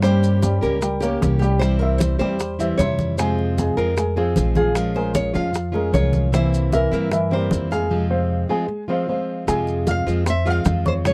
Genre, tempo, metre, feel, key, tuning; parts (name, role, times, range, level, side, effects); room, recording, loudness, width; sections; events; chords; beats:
latin, Cuban son and guajira; 152 BPM; 4/4; straight; F harmonic minor; A4 = 441 Hz
nylon-string guitar; melody; 0.0-11.1 s; G4 to F5; -27 LUFS; equal
fingerpicked plugged-in steel-string acoustic guitar; accompaniment; 0.0-11.1 s; C3 to G4; -27 LUFS; equal
dark baby grand piano; arpeggios; 0.0-11.1 s; C3 to F6; -27 LUFS; equal
upright bass; bass; 0.0-11.1 s; Bb1 to G2; -25 LUFS; equal
bongos; percussion; 0.0-11.1 s; -30 LUFS; equal
congas; percussion; 0.0-11.1 s; -28 LUFS; equal
maracas; percussion; 0.0-11.1 s; -40 LUFS; equal
little or no reverb; dry, close 1970s-style studio recording; -20 LUFS; mono
0.0-9.5 A section; 9.5-11.1 B section
break 7.9-9.5
0.0 Gdim; 1.6 C; 3.2 Fm; 4.8 Bbm7; 6.3 C7; 7.9 Fm
| 0.04 0.43 0.82 1.22 | 1.61 2.00 2.40 2.79 | 3.19 3.58 3.97 4.37 | 4.76 5.15 5.54 5.94 | 6.33 6.72 7.12 7.51 | 7.90 8.30 8.69 9.09 | 9.48 9.87 10.27 10.66 | 11.05